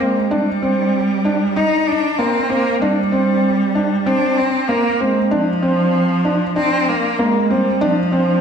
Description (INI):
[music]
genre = electronica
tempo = 96 BPM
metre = 4/4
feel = straight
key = Bb mixolydian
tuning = A4 = 443 Hz
[part]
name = bright cello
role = melody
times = 0.0-8.4 s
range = F3 to Eb4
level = -17 LUFS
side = right 1 dB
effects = none
[part]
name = felt-muted upright piano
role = riff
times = 0.0-8.4 s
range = Bb3 to Eb4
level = -18 LUFS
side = equal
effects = none
[sound]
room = wet recital hall reverb, RT60 1.6 s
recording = none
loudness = -14 LUFS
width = side -7 dB against mid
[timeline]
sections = 0.0-8.4 A section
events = build-up 0.0-8.4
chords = 0.0 Bbadd9 (rootless); 1.6 Eb6; 4.1 Bbadd9 (rootless)